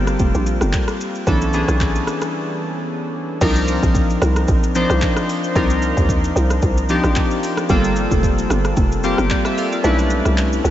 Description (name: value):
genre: amapiano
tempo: 112 BPM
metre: 4/4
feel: swing 55% on 16ths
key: C dorian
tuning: A4 = 435 Hz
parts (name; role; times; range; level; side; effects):
- warm analog keys; accompaniment; 0.0-10.7 s; E3 to F5; -19 LUFS; left 1 dB; chorus
- hollow log drum bass; bass; 0.0-10.7 s; F1 to Eb2; -19 LUFS; equal; none
- deep house drum kit; drums; 0.1-10.7 s; crash cymbal, handclaps, hi-hat, kick drum, rim click, shaker; -22 LUFS; equal; none
room: moderate huge ambient reverb, RT60 8.0 s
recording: dreamy mix soaked in reverb, nothing above 7.9 kHz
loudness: -16 LUFS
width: side -12 dB against mid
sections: 0.0-3.4 A section; 3.4-10.7 B section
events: break 2.3-3.4; drop 3.4-10.7; kick muted 9.8-10.7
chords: 0.0 Gm11; 1.3 Bm11; 3.4 Cm11; 7.7 Gm11; 9.8 Bm11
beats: 0.20 0.73 | 1.27 1.80 2.34 2.88 | 3.41 3.95 4.48 5.02 | 5.55 6.09 6.63 7.16 | 7.70 8.23 8.77 9.30 | 9.84 10.38